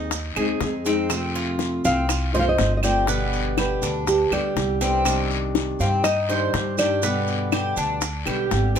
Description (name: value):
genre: latin, Cuban son and guajira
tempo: 122 BPM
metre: 4/4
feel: straight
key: unclear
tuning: A4 = 441 Hz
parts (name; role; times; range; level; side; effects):
- fingerpicked steel-string acoustic guitar; accompaniment; 0.0-8.8 s; B2 to Ab4; -26 LUFS; left 1 dB; none
- Cuban tres; arpeggios; 0.0-8.8 s; B3 to C5; -27 LUFS; right 2 dB; none
- upright bass; bass; 0.0-8.8 s; G1 to G2; -26 LUFS; equal; none
- bongos; percussion; 0.1-8.8 s; none; -27 LUFS; left 7 dB; none
- guiro; percussion; 0.1-8.8 s; none; -34 LUFS; left 7 dB; none
- maracas; percussion; 0.1-8.8 s; none; -33 LUFS; right 6 dB; none
- claves; percussion; 0.4-8.5 s; none; -31 LUFS; right 7 dB; none
- nylon-string guitar; melody; 1.9-7.7 s; G4 to F5; -24 LUFS; equal; none
room: moderate studio ambience, RT60 0.4 s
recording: minimal, uncompressed stereo recording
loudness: -20 LUFS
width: side -8 dB against mid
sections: 0.0-8.8 A section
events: none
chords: 0.0 Ab; 1.1 F; 3.1 G; 5.1 Cmadd9; 7.0 G